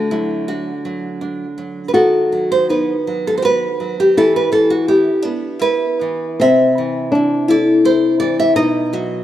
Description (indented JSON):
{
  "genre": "romantic duo for nylon-string guitar and classical guitar",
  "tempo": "82 BPM",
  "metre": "3/4",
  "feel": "uneven beats, rubato",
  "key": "E minor",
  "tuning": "A4 = 436 Hz",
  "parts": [
    { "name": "flamenco guitar", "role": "melody", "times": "0.0-9.2 s", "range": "A3 to F#4", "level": "-17 LUFS", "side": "left 2 dB", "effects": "none" },
    { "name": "nylon-string guitar", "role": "accompaniment", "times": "0.0-9.2 s", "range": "B2 to E5", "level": "-16 LUFS", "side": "right 1 dB", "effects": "none" }
  ],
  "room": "moderate lush hall reverb, RT60 2.9 s",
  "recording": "rough home demo mix",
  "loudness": "-13 LUFS",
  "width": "side -12 dB against mid",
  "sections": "0.0-9.2 A section",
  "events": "none",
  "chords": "0.0 D; 2.0 B/D#; 4.2 Em; 6.4 Am/C; 8.6 B"
}